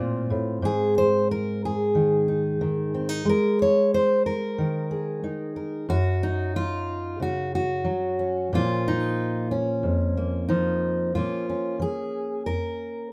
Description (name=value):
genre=folk, solo fingerstyle acoustic guitar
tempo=91 BPM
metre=4/4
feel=straight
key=Bb minor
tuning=A4 = 439 Hz
part: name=fingerpicked steel-string acoustic guitar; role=solo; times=0.0-13.1 s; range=F2 to Db5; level=-25 LUFS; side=equal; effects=none
room=light reverb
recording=none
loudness=-25 LUFS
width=mono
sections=0.0-11.2 A section; 11.2-13.1 B section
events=none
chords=0.0 F/A; 0.6 Abadd9; 5.9 Gb5; 8.5 Bbm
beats=| 0.65 1.31 1.97 2.63 | 3.28 3.94 4.59 5.24 | 5.90 6.55 7.21 7.86 | 8.52 9.18 9.83 10.50 | 11.16 11.82 12.48